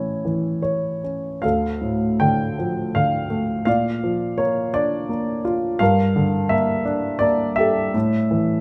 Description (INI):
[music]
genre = classical, lyrical solo piano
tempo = 83 BPM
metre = 3/4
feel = uneven beats, rubato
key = D minor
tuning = A4 = 441 Hz
[part]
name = dark grand piano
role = solo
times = 0.0-8.6 s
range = D2 to G5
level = -21 LUFS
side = equal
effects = none
[sound]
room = light reverb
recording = close, detailed microphones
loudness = -21 LUFS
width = mono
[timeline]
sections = 0.0-1.4 A section; 1.4-8.6 B section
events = none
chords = 0.0 A; 1.4 Dm; 3.7 Bb; 5.8 Gm; 7.9 A5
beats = 0.65 | 1.43 2.21 2.95 | 3.66 4.38 5.09 | 5.80 6.51 7.22 | 7.95